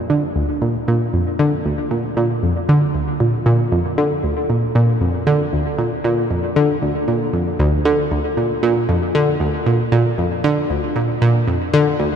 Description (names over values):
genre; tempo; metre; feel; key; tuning
ambient; 116 BPM; 4/4; straight; unclear; A4 = 442 Hz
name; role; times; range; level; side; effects
analog pluck; solo; 0.1-12.1 s; D2 to D3; -16 LUFS; equal; chorus, analog delay
room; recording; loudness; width
wet huge ambient reverb, RT60 7.7 s; dark, warm production; -16 LUFS; side -8 dB against mid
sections
0.0-12.2 A section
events
none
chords
none